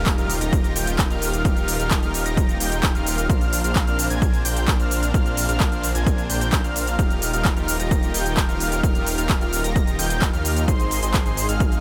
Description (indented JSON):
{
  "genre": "EDM, festival progressive house",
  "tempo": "130 BPM",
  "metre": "4/4",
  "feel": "straight",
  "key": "Eb major",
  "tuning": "A4 = 440 Hz",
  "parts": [
    { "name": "supersaw pad", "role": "sustained chords", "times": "0.0-11.8 s", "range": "Eb3 to Bb4", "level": "-34 LUFS", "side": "equal", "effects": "sidechain pumping" },
    { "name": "unison lead", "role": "arpeggios", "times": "0.0-11.8 s", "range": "C6 to Bb6", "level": "-32 LUFS", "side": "equal", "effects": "sidechain pumping, dub echo" },
    { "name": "dense compressed supersaw", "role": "riff", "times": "0.0-11.8 s", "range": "D4 to Bb5", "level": "-31 LUFS", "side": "equal", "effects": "sidechain pumping, dub echo" },
    { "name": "detuned saw bass", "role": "bass", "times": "0.0-11.8 s", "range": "Eb1 to Eb2", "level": "-28 LUFS", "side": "equal", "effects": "chorus, sidechain pumping" },
    { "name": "impact", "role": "sound effects", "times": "0.0-1.4 s", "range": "none", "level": "-39 LUFS", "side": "equal", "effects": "none" },
    { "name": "big-room dance drum kit", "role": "drums", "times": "0.1-11.8 s", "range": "handclaps, hi-hat, shaker", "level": "-28 LUFS", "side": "equal", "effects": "none" },
    { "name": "electronic kick drum", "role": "drums", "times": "0.1-11.7 s", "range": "none", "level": "-23 LUFS", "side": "equal", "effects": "none" }
  ],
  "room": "little or no reverb",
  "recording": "none",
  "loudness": "-21 LUFS",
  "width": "mono",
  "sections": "0.0-11.8 A section",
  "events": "impact 0.0-1.4",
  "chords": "0.0 Ebadd9; 3.3 Bbadd9; 7.0 Ebadd9; 10.7 Ab",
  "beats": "0.07 0.53 0.99 | 1.45 1.91 2.37 2.83 | 3.30 3.76 4.22 4.68 | 5.14 5.60 6.07 6.53 | 6.99 7.45 7.91 8.37 | 8.83 9.30 9.76 10.22 | 10.68 11.14 11.60"
}